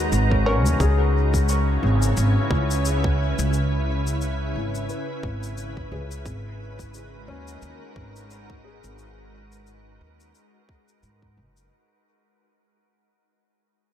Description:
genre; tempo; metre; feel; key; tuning
ambient dub; 88 BPM; 4/4; swing 57% on 16ths; unclear; A4 = 440 Hz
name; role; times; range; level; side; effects
soft additive organ-like pad; sustained chords; 0.0-11.7 s; C#3 to A#5; -29 LUFS; equal; ensemble chorus, built-in reverb
felt-muted upright piano; arpeggios; 0.0-11.7 s; C#4 to C#6; -31 LUFS; left 4 dB; low-pass filter, dub echo
upright bass; bass; 0.0-11.7 s; F#1 to G#2; -23 LUFS; equal; none
cabasa; drums; 0.1-11.7 s; none; -35 LUFS; left 5 dB; dub echo
electronic kick drum; drums; 0.3-11.3 s; none; -26 LUFS; equal; none
filtered dub chord stab; stabs; 0.5-0.6 s; F#3 to A#4; -31 LUFS; equal; phaser, cassette tape, dub echo
room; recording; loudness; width
light reverb; none; -20 LUFS; side -10 dB against mid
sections
0.0-11.7 A section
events
fade-out 0.0-11.7; filter sweep on felt piano 0.0-11.7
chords
0.0 G#m9; 0.8 C#m7; 6.3 G#m9

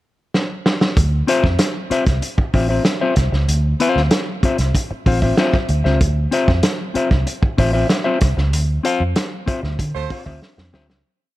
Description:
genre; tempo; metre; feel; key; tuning
funk; 95 BPM; 4/4; straight; D minor; A4 = 444 Hz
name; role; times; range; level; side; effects
vintage drum kit; drums; 0.3-11.0 s; hi-hat, kick drum, snare drum; -18 LUFS; equal; none
vintage muted fingered electric bass; bass; 1.0-11.0 s; A1 to D3; -18 LUFS; equal; none
mellow electric guitar; accompaniment; 1.3-10.9 s; C4 to F5; -20 LUFS; left 3 dB; none
warm horn section; second line; 9.9-10.3 s; A3 to C5; -29 LUFS; right 9 dB; slapback echo
room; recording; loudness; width
light reverb, studio reverb; dark, warm production; -15 LUFS; side -16 dB against mid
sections
0.0-1.0 pickup bar; 1.0-11.0 groove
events
drum fill 0.3-1.0, 10.4-11.0; fade-out 8.5-11.0; band accent 8.5-11.0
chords
0.0 N.C.; 1.0 Dm9

